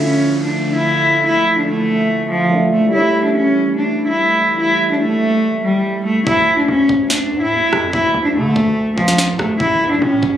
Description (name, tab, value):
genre	hip hop, drill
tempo	144 BPM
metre	4/4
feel	half-time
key	D harmonic minor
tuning	A4 = 440 Hz
part	dark cello	melody	0.0-10.4 s	F3 to E4	-14 LUFS	equal	digital delay
part	dark grand piano	accompaniment	0.0-6.3 s	D3 to C#5	-20 LUFS	right 2 dB	none
part	hollow soft pad	sustained chords	0.0-6.2 s	D3 to E4	-26 LUFS	left 1 dB	chorus
part	downlifter	sound effects	0.0-2.9 s	none	-32 LUFS	equal	none
part	distorted 808-style bass	bass	6.3-10.4 s	A1 to D3	-23 LUFS	equal	distortion
part	drill drum kit	drums	6.3-10.3 s	kick drum, rim click, snare drum	-20 LUFS	equal	none
room	light reverb, digital ambience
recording	recorded on a phone in the room, club reverb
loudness	-13 LUFS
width	side -10 dB against mid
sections	0.0-6.3 A section; 6.3-10.4 B section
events	hi-hats muted 6.3-10.4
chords	0.0 Dmadd9; 2.9 A7; 6.3 Dsus2; 9.6 A